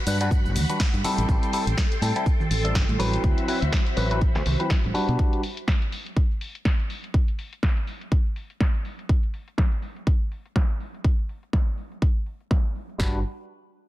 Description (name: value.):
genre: filtered disco house.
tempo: 123 BPM.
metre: 4/4.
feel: swing 57% on 16ths.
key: G major.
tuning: A4 = 441 Hz.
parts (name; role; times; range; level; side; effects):
string machine, full ensemble; sustained chords; 0.0-5.2 s; F#4 to C6; -32 LUFS; equal; phaser, ensemble chorus, sidechain pumping, low-pass filter.
overdriven tine electric piano; accompaniment; 0.1-5.4, 13.0-13.2 s; F#3 to B4; -28 LUFS; left 1 dB; phaser, sidechain pumping, low-pass filter.
fingered electric bass; bass; 0.1-5.2, 13.0-13.2 s; G1 to B2; -25 LUFS; equal; sidechain pumping, low-pass filter.
house drum kit; drums; 0.1-13.0 s; hi-hat, shaker, snare drum; -31 LUFS; equal; sidechain pumping on hats, low-pass filter on hats, sidechain pumping on perc, low-pass filter on perc, low-pass filter on snare.
tambourine and congas; percussion; 0.1-5.2 s; none; -34 LUFS; right 3 dB; sidechain pumping on perc, low-pass filter on perc.
house drum kit; drums; 0.3-13.1 s; kick drum, snare drum; -22 LUFS; equal; none.
room: little or no reverb.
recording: dense, heavily limited modern master.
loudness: -22 LUFS.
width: side -16 dB against mid.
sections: 0.0-13.0 A section.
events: filter sweep on drum 0.0-13.0; filter sweep 0.0-13.0.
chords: 0.0 Gmaj7; 1.0 Am7; 3.2 D13; 5.2 Gmaj7; 8.8 N.C.; 13.0 Gmaj7.